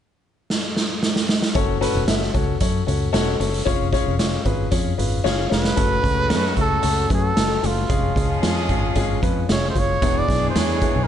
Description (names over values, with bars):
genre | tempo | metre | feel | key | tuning
uptempo 1960s-style soul | 113 BPM | 4/4 | straight | F# minor | A4 = 439 Hz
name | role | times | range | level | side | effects
raw garage drum kit | drums | 0.5-10.9 s | hi-hat, kick drum, snare drum | -22 LUFS | equal | none
clear grand piano | accompaniment | 1.6-11.0 s | G#3 to E5 | -24 LUFS | left 5 dB | none
fingered electric bass | bass | 1.6-11.1 s | E1 to F#2 | -24 LUFS | equal | none
warm trumpet | melody | 5.5-11.1 s | E#4 to D5 | -23 LUFS | right 2 dB | plate reverb
clear horn section | second line | 5.8-11.1 s | C#3 to G#4 | -29 LUFS | right 1 dB | none
room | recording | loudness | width
light reverb | nothing above 10.7 kHz | -18 LUFS | side -10 dB against mid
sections
0.0-1.6 A section; 1.6-5.8 B section; 5.8-11.1 C section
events
drum fill 0.5-1.6, 5.3-5.8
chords
0.0 N.C.; 1.6 F#m; 3.7 C#/E#; 5.8 F#m; 7.9 C#/E#; 10.0 E7